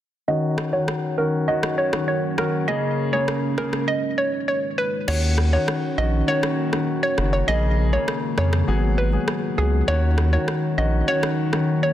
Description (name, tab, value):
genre	dancehall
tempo	100 BPM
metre	4/4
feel	straight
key	Eb minor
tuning	A4 = 440 Hz
part	hollow square pluck	melody	0.3-11.9 s	Ab4 to Eb5	-24 LUFS	right 2 dB	chorus, low-pass filter, tape echo
part	warm concert grand piano	accompaniment	0.3-11.9 s	Db3 to Ab4	-25 LUFS	left 3 dB	low-pass filter
part	deep dark ambient pad	sustained chords	1.1-11.9 s	Db3 to Cb5	-28 LUFS	right 2 dB	chorus, built-in reverb, low-pass filter
part	afro-pop drum kit	drums	0.6-11.7 s	crash cymbal, rim click	-29 LUFS	equal	soft clipping on snare
part	round analog bass	bass	5.1-11.0 s	Gb1 to F2	-20 LUFS	equal	none
room	light reverb, digital ambience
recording	dense, heavily limited modern master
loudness	-19 LUFS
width	side -12 dB against mid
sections	0.3-5.1 A section; 5.1-11.9 B section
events	filter sweep 0.3-5.1; silent gap 3.9-5.1; kick muted 5.1-11.9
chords	0.3 Ebm7; 2.7 Bbm7; 3.9 Abm7; 5.1 Ebm7; 7.5 Bbm7; 8.7 Abm7; 9.9 Ebm7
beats	| 0.28 0.88 1.48 2.08 | 2.68 3.28 3.88 4.48 | 5.08 5.68 6.28 6.88 | 7.48 8.08 8.68 9.28 | 9.88 10.48 11.08 11.68